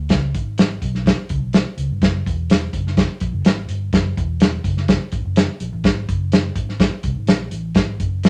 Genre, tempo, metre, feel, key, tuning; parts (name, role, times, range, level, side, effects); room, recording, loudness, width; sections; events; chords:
uptempo 1960s-style soul; 125 BPM; 4/4; straight; C# dorian; A4 = 440 Hz
vintage muted fingered electric bass; bass; 0.0-8.3 s; E1 to C#2; -26 LUFS; equal
natural country drum kit; drums; 0.1-8.3 s; hi-hat, kick drum, snare drum; -19 LUFS; equal
moderate studio reverb, RT60 0.6 s; -19 LUFS; mono
0.0-8.3 A section